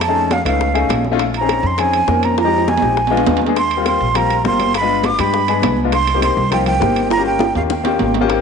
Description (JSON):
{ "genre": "Afro-Cuban jazz", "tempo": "203 BPM", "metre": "4/4", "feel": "straight", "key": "F minor", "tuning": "A4 = 441 Hz", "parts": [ { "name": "breathy mellow silver concert flute", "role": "melody", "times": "0.0-8.1 s", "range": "F5 to D6", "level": "-18 LUFS", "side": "right 4 dB", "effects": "none" }, { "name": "upright bass", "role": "bass", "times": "0.0-8.4 s", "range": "G1 to G2", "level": "-22 LUFS", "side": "right 1 dB", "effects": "none" }, { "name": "bongos", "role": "percussion", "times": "0.0-8.4 s", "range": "none", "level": "-26 LUFS", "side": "left 10 dB", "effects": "none" }, { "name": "congas", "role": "percussion", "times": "0.0-8.4 s", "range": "none", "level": "-24 LUFS", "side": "right 2 dB", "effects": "none" }, { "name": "timbales", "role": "percussion", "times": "0.0-8.4 s", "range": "none", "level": "-24 LUFS", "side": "right 12 dB", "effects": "none" }, { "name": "warm grand piano", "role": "accompaniment", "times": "0.1-8.4 s", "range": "G3 to B4", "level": "-19 LUFS", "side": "left 10 dB", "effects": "none" } ], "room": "moderate echo chamber reverb, RT60 1.9 s, studio ambience", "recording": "1960s-style stereo with parts hard left and right, nothing above 10.3 kHz", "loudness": "-13 LUFS", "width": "side -6 dB against mid", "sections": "0.0-8.3 A section", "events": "drum fill 2.4-3.6, 7.1-8.3", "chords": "0.0 F7alt; 1.2 Bbm11; 2.4 Fm7; 3.0 Bb7b9; 3.6 Eb69; 4.7 G7b9; 5.9 Cm7; 7.1 Gm7b5; 7.7 Eb7" }